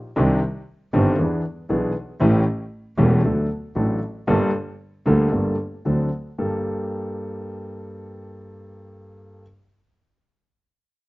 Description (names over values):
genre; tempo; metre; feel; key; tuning
tango; 116 BPM; 4/4; rubato; G minor; A4 = 440 Hz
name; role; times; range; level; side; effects
warm concert grand piano; accompaniment; 0.2-9.4 s; E1 to A4; -22 LUFS; left 1 dB; none
clear double bass; bass; 0.2-6.6 s; E1 to E2; -22 LUFS; right 1 dB; none
room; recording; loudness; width
little or no reverb; recorded outdoors, with no room sound, nothing above 7.5 kHz; -20 LUFS; side -20 dB against mid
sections
0.0-6.4 A section; 6.4-10.5 B section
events
none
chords
0.2 Cmadd9; 1.2 E7; 2.2 A7; 3.2 D; 4.3 Gmadd9; 5.9 D7; 6.4 Gmadd9